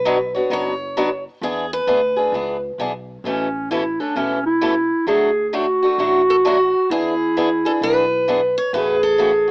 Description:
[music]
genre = acoustic string swing (jazz manouche)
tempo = 131 BPM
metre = 4/4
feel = swing 64% on 8ths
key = A major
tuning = A4 = 445 Hz
[part]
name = picked steel-string acoustic guitar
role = melody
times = 0.0-2.6, 6.3-9.5 s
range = F#4 to C#5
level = -21 LUFS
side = equal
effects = plate reverb
[part]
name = upright bass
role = bass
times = 0.0-9.5 s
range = E1 to E2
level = -35 LUFS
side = equal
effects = none
[part]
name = picked steel-string acoustic guitar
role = accompaniment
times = 0.1-9.5 s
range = B2 to C#5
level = -21 LUFS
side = left 1 dB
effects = none
[part]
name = breathy clarinet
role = second line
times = 3.3-9.5 s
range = C#4 to G#4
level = -17 LUFS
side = right 1 dB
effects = none
[sound]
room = light reverb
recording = rough home demo mix, AM radio sound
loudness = -16 LUFS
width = side -27 dB against mid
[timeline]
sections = 0.0-9.5 A section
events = none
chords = 0.0 Bmadd9; 1.4 E7; 3.3 Aadd9; 5.1 D; 6.9 E7; 8.7 A6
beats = 0.06 0.52 0.97 | 1.43 1.88 2.34 2.80 | 3.25 3.71 4.17 4.62 | 5.08 5.54 5.99 6.45 | 6.91 7.36 7.82 8.28 | 8.73 9.19

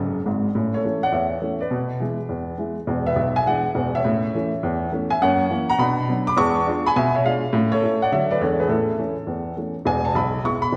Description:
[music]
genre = jazz, stride piano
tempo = 206 BPM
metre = 4/4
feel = swing 62% on 8ths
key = A major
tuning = A4 = 444 Hz
[part]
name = warm upright piano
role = solo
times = 0.0-10.8 s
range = E1 to D6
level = -22 LUFS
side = equal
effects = none
[sound]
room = wet scoring stage reverb, RT60 1.6 s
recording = recorded in a church or concert hall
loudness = -22 LUFS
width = mono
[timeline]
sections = 0.5-9.9 A section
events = upright piano fill 0.0-0.5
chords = 0.0 A5; 0.5 A; 1.7 E7/B; 2.9 E7; 4.0 A; 5.2 F#7; 5.8 Bm; 6.4 E7b9; 7.5 A; 8.1 D; 8.4 E7; 8.7 A; 9.9 E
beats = 0.25 | 0.55 0.84 1.13 1.42 | 1.71 2.00 2.30 2.59 | 2.88 3.17 3.46 3.75 | 4.04 4.34 4.63 4.92 | 5.21 5.50 5.79 6.08 | 6.37 6.67 6.96 7.25 | 7.54 7.83 8.12 8.41 | 8.70 8.99 9.28 9.57 | 9.86 10.15 10.44 10.73

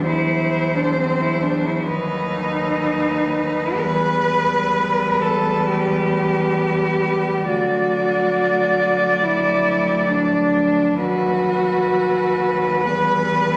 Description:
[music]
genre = classical, lyrical piece for cello ensemble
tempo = 57-70 BPM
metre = 4/4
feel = rubato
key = E minor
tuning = A4 = 436 Hz
[part]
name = rich cello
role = melody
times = 0.0-13.6 s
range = B4 to D5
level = -24 LUFS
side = equal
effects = none
[part]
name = rich cello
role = second line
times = 0.0-13.6 s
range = C4 to B4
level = -23 LUFS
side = equal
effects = none
[part]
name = rich cello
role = bass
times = 0.0-13.6 s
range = D2 to E2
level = -28 LUFS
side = equal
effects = none
[part]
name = dark cello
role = accompaniment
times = 0.1-13.6 s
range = F#3 to G3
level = -30 LUFS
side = equal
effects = none
[sound]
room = wet recital hall reverb, RT60 1.5 s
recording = none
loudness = -19 LUFS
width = mono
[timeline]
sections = 0.0-13.6 A section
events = none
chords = 0.1 D9/E; 1.9 B/D#; 3.8 Em; 7.5 D; 11.0 B/D#; 12.8 Em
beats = | 0.06 0.98 1.88 2.80 | 3.81 4.77 5.67 6.57 | 7.47 8.37 9.24 10.10 | 10.98 11.87 12.84

